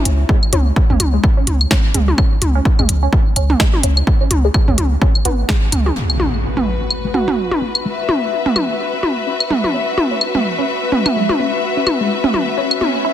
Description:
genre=minimal techno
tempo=127 BPM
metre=4/4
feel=swing 58% on 16ths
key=C# minor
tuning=A4 = 440 Hz
part: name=soft struck synth lead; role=melody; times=0.0-0.3, 7.1-7.6 s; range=E4 to F#4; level=-27 LUFS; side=right 1 dB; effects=chorus, dub echo
part: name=resonant blip pluck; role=riff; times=0.1-13.1 s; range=G#3 to G#4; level=-24 LUFS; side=equal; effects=phaser, lush chorus, sidechain pumping, dub echo
part: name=punchy sub bass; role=bass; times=0.1-13.0 s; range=G#1 to C#2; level=-17 LUFS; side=equal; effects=sidechain pumping, high-pass filter
part: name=techno drum kit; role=drums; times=0.1-5.8 s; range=hi-hat, snare drum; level=-20 LUFS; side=equal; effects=low-pass filter on snare, low-pass filter on hats
part: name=electronic kick drum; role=drums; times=0.3-5.6 s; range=none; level=-15 LUFS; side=equal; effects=none
part: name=electronic claves and toms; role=percussion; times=0.4-12.9 s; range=none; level=-19 LUFS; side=right 1 dB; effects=dub echo
part: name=impact and swell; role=sound effects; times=6.0-7.8, 12.7-13.1 s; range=none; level=-22 LUFS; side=equal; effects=none
part: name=warm studio string section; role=texture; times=6.0-13.1 s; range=F#4 to E5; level=-20 LUFS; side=left 4 dB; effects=sidechain pumping
room=light reverb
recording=dense, heavily limited modern master, faint mains hum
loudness=-13 LUFS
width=side -11 dB against mid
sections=0.0-6.0 A section; 6.0-13.1 B section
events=impact 6.0-7.8; swell 12.7-13.1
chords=0.0 N.C.; 6.0 C#sus4

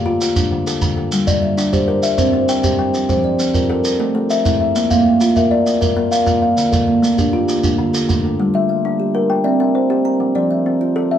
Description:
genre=southern african traditional, mbira-style interlocking cycle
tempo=132 BPM (dotted quarters)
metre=12/8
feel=straight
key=G dorian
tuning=A4 = 440 Hz
part: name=kalimba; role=arpeggios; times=0.0-11.2 s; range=D3 to G5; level=-17 LUFS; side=left 3 dB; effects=none
part: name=shekere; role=percussion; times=0.2-8.2 s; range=none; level=-21 LUFS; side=right 2 dB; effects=none
part: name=kalimba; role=arpeggios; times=1.3-11.2 s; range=D3 to Bb5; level=-18 LUFS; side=right 4 dB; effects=none
room=wet studio reverb, RT60 0.5 s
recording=band playing live in one room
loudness=-14 LUFS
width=side -10 dB against mid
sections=0.0-8.4 A section; 8.4-11.2 B section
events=none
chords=0.0 Dm; 1.1 Gm; 2.0 C; 2.9 F; 3.8 A5; 4.8 Bb; 6.6 Dm; 8.4 Gm; 9.3 C; 10.2 F

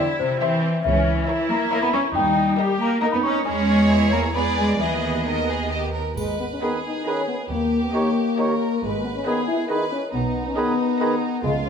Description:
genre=cinematic, playful, whimsical film cue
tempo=137 BPM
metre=3/4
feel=straight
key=G# minor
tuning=A4 = 440 Hz
part: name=celesta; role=melody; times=0.0-5.7 s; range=C5 to C#6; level=-25 LUFS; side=left 3 dB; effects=none
part: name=rich symphonic violin section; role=melody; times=0.0-11.3 s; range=C#5 to E5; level=-32 LUFS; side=left 1 dB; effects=none
part: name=rich chamber violin section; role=second line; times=0.0-11.7 s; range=D#4 to C#5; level=-29 LUFS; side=equal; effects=none
part: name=rich studio viola section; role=accompaniment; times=0.0-11.3 s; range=G#3 to D#5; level=-28 LUFS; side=equal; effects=none
part: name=rich studio cello section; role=bass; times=0.0-11.7 s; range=D#2 to C#4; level=-23 LUFS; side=right 1 dB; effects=none
part: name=warm chamber double bass section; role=bass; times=0.8-11.7 s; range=G#1 to E2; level=-28 LUFS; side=right 3 dB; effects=none
part: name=dark French horn section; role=sustained chords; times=6.2-11.7 s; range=G#3 to E4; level=-23 LUFS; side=left 3 dB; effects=none
part: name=triangle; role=percussion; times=6.2-7.0 s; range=none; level=-46 LUFS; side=right 1 dB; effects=none
part: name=mellow clarinet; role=second line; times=6.6-11.2 s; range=G4 to G#4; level=-32 LUFS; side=right 1 dB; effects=none
part: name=mellow cor anglais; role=second line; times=6.6-11.2 s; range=B4 to C#5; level=-30 LUFS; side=right 3 dB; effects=none
part: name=warm bassoon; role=accompaniment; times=6.6-11.2 s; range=D#3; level=-31 LUFS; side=right 3 dB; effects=none
room=wet recital hall reverb, RT60 1.6 s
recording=none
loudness=-19 LUFS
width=side -7 dB against mid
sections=0.0-6.2 A section; 6.2-11.7 B section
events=none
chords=0.0 C; 0.8 A#dim/C#; 2.2 D#; 3.5 C#m/E; 4.4 E7; 4.8 G#m/D#; 5.7 D#; 6.2 G#m; 7.5 D#7; 8.8 G#m; 10.1 G#m/B

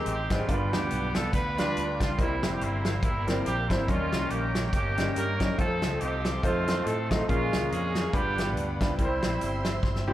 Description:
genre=uptempo gospel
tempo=141 BPM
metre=4/4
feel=swing 58% on 8ths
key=unclear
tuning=A4 = 440 Hz
part: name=warm horn section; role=melody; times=0.0-10.1 s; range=G3 to B4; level=-31 LUFS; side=right 2 dB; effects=slapback echo
part: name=clear grand piano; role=accompaniment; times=0.0-10.1 s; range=G2 to Eb5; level=-31 LUFS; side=left 1 dB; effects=slapback echo
part: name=mellow tonewheel organ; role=sustained chords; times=0.0-10.1 s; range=Ab3 to E6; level=-41 LUFS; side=right 1 dB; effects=none
part: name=warm studio string section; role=sustained chords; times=0.0-10.1 s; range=C5 to C6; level=-43 LUFS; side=left 2 dB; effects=none
part: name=fingered electric bass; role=bass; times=0.1-10.1 s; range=F1 to A2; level=-32 LUFS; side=equal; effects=none
part: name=natural country drum kit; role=drums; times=0.1-10.1 s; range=hi-hat, kick drum, snare drum, toms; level=-30 LUFS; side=equal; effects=none
room=light reverb, small room ambience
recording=live gig heard through the venue's PA, club reverb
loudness=-25 LUFS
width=side -13 dB against mid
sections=0.0-10.1 A section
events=drum fill 9.8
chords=0.5 G7; 2.2 C7; 3.9 Eb7; 5.6 F7; 7.3 Bbm7; 8.1 G7; 9.0 C

